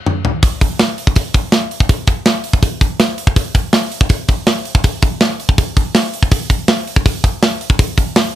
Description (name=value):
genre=metal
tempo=163 BPM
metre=4/4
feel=straight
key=none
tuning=none
part: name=tight metal drum kit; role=drums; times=0.1-8.2 s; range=hi-hat, kick drum, snare drum, toms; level=-12 LUFS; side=equal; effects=none
room=little or no reverb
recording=none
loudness=-12 LUFS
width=side -13 dB against mid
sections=0.4-8.4 A section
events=drum fill 0.0-0.4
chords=none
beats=0.06 | 0.42 0.79 1.16 1.53 | 1.90 2.26 2.63 3.00 | 3.37 3.73 4.10 4.47 | 4.84 5.21 5.58 5.94 | 6.31 6.68 7.05 7.42 | 7.79 8.16